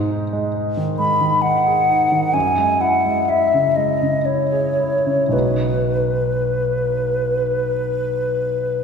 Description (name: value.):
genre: classical, impressionist duo for flute and grand piano.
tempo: 36-45 BPM (dotted quarters).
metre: 12/8.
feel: rubato.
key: B major.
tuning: A4 = 440 Hz.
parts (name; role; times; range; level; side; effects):
warm concert grand piano; accompaniment; 0.0-8.8 s; B1 to B4; -21 LUFS; right 1 dB; none.
mellow hollow silver concert flute; melody; 1.0-8.8 s; B4 to B5; -18 LUFS; left 1 dB; none.
room: wet scoring stage reverb, RT60 1.8 s.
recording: heard from further back in the room.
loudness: -16 LUFS.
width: side -6 dB against mid.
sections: 0.0-8.8 A section.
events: none.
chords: 0.0 G#5; 2.3 F#sus2; 5.3 B6.